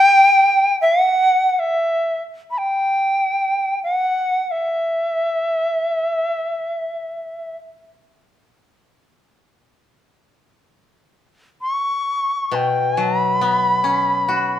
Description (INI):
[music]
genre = japanese traditional, Japanese chamber music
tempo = free time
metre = none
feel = none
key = unclear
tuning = A4 = 442 Hz
[part]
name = bright reedy shakuhachi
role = melody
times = 0.0-7.6, 11.6-14.6 s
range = E5 to C#6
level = -16 LUFS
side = equal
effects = none
[part]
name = koto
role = accompaniment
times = 12.5-14.6 s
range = B2 to F#4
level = -21 LUFS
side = left 4 dB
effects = none
[sound]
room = moderate recital hall reverb, RT60 1.3 s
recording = none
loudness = -16 LUFS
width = side -11 dB against mid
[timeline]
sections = 0.0-10.1 A section; 10.1-14.6 A section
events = none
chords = none